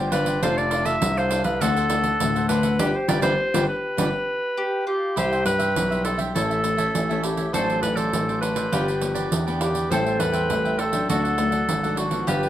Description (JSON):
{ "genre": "samba and choro", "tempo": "101 BPM", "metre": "4/4", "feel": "straight", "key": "unclear", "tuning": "A4 = 439 Hz", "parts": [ { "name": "mandolin", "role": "second line", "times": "0.0-12.5 s", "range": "F4 to A4", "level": "-30 LUFS", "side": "left 2 dB", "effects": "none" }, { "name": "cavaquinho", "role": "accompaniment", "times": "0.0-12.5 s", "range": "D4 to G5", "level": "-30 LUFS", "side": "right 3 dB", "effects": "none" }, { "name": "nylon-string guitar", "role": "accompaniment", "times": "0.0-12.5 s", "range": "G2 to C5", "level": "-30 LUFS", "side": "left 5 dB", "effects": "none" }, { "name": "warm grand piano", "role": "bass", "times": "0.0-12.5 s", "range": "F1 to G2", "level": "-26 LUFS", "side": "left 1 dB", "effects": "none" }, { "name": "bright clarinet", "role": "melody", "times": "0.1-12.5 s", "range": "F#4 to E5", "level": "-24 LUFS", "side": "equal", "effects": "none" }, { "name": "pandeiro", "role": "percussion", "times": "0.1-12.5 s", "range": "none", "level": "-29 LUFS", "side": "right 4 dB", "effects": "none" } ], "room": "moderate studio reverb, RT60 0.6 s", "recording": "none", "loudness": "-20 LUFS", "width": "side -12 dB against mid", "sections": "0.0-5.2 A section; 5.2-12.5 B section", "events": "band accent 2.8-5.2", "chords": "0.4 F69; 1.6 D7; 2.8 G7; 5.2 C; 6.4 A; 7.5 D7/A; 8.7 G7; 9.9 Am7; 11.1 D", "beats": "| 0.42 1.02 1.61 2.20 | 2.80 3.39 3.98 4.58 | 5.17 5.76 6.35 6.95 | 7.54 8.13 8.72 9.32 | 9.91 10.50 11.09 11.69 | 12.28" }